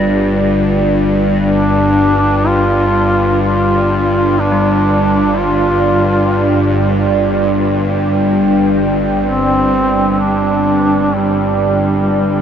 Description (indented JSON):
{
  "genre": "dark ambient drone",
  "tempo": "free time",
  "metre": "none",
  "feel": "none",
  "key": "unclear",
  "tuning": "A4 = 440 Hz",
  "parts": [
    { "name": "deep dark ambient pad", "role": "sustained chords", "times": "0.0-12.4 s", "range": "G3 to G5", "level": "-16 LUFS", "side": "right 1 dB", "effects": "chorus, built-in reverb" },
    { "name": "gamelan-type bronze metallophone", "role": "arpeggios", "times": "0.0-10.3 s", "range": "D3 to F4", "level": "-25 LUFS", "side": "left 2 dB", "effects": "none" },
    { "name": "bowed-like drone", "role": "drone", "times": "0.0-12.4 s", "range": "G1 to G2", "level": "-16 LUFS", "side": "equal", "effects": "built-in reverb" },
    { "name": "warm duduk", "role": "melody", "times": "1.5-12.4 s", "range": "G3 to F4", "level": "-15 LUFS", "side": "equal", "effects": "diffuse ambient delay" }
  ],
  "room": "wet huge ambient reverb, RT60 9.2 s",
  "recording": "in a vast, echoing space, nothing above 7.5 kHz",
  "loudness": "-11 LUFS",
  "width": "side -8 dB against mid",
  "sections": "0.0-12.4 A section",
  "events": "none",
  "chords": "0.0 G5"
}